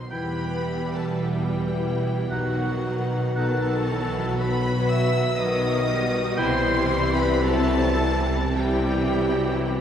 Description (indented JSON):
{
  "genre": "classical, slow romantic movement for symphony orchestra",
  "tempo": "43-60 BPM",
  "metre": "3/4",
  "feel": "rubato",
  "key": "E minor",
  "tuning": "A4 = 440 Hz",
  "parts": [
    { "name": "warm symphonic violin section", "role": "melody", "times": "0.0-9.8 s", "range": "F#5 to E6", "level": "-32 LUFS", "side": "left 2 dB", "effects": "none" },
    { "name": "mellow hollow flute section", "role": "second line", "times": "0.0-9.8 s", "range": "F#4 to E5", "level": "-31 LUFS", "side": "right 1 dB", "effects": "none" },
    { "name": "warm symphonic violin section", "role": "second line", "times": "0.0-9.8 s", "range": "B3 to G4", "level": "-33 LUFS", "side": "left 2 dB", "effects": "none" },
    { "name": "rich symphonic viola section", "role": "accompaniment", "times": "0.0-9.8 s", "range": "D#3 to G3", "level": "-30 LUFS", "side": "right 1 dB", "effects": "none" },
    { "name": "concert harp", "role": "arpeggios", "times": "0.0-9.8 s", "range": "B2 to B4", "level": "-31 LUFS", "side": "left 3 dB", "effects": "none" },
    { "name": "warm clarinet", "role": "second line", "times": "0.1-6.8 s", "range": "D#4 to E4", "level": "-35 LUFS", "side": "left 3 dB", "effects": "none" },
    { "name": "warm cor anglais", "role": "second line", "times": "0.1-6.8 s", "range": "F#5 to G5", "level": "-33 LUFS", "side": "right 2 dB", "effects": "none" },
    { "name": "clear trombone section", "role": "sustained chords", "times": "0.1-9.8 s", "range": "B2 to G3", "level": "-34 LUFS", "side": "right 3 dB", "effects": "none" },
    { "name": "mellow French horn section", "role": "sustained chords", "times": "0.1-9.8 s", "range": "B3 to G4", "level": "-31 LUFS", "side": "left 2 dB", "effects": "none" },
    { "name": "clear symphonic double bass section", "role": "bass", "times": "0.1-9.8 s", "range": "E1 to C2", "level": "-28 LUFS", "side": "right 1 dB", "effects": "none" },
    { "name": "rich symphonic cello section", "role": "bass", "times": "0.1-9.8 s", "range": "E2 to C3", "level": "-30 LUFS", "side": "right 1 dB", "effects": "none" }
  ],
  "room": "wet concert hall reverb, RT60 2.4 s",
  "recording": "heard from further back in the room",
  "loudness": "-21 LUFS",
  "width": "side -9 dB against mid",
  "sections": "0.1-9.8 A section",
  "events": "none",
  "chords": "0.1 Em; 2.3 B; 3.4 B7; 6.4 Cmaj7",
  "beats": "| 0.11 1.21 2.31 | 3.36 4.38 5.38 | 6.38 7.42 8.53"
}